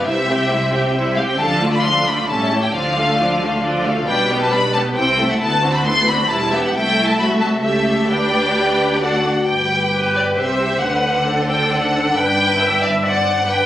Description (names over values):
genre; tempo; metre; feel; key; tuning
quick classical-period movement for string orchestra; 135 BPM; 3/4; rubato; G major from 4.1 s; A4 = 441 Hz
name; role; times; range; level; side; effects
warm symphonic violin section; melody; 0.0-13.7 s; D5 to C6; -18 LUFS; left 1 dB; none
dark symphonic violin section; second line; 0.0-13.7 s; D4 to G5; -22 LUFS; left 1 dB; none
rich symphonic viola section; accompaniment; 0.0-13.7 s; F3 to E5; -20 LUFS; equal; none
rich symphonic double bass section; bass; 0.0-13.7 s; E1 to D2; -27 LUFS; right 1 dB; none
warm symphonic cello section; bass; 0.0-13.7 s; C2 to D3; -24 LUFS; equal; none
room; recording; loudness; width
wet recital hall reverb, RT60 1.7 s; recorded on a phone in the room, studio reverb, compression; -15 LUFS; side -12 dB against mid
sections
0.0-9.5 A section; 9.5-13.7 B section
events
none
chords
0.1 C; 1.4 Dm; 2.3 A7; 2.7 Dm; 4.1 G/B; 5.0 Am/C; 5.4 D13; 6.3 Em; 6.7 Am/C; 7.6 A7/C#; 8.1 G/D; 9.0 D; 9.5 G; 10.4 C; 10.8 D7; 12.2 G; 13.0 D7/G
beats
| 0.06 0.51 0.96 | 1.41 1.86 2.30 | 2.75 3.19 3.63 | 4.07 4.51 4.95 | 5.39 5.83 6.28 | 6.72 7.17 7.62 | 8.08 8.54 9.01 | 9.48 9.94 10.39 | 10.83 11.28 11.72 | 12.16 12.60 13.04 | 13.49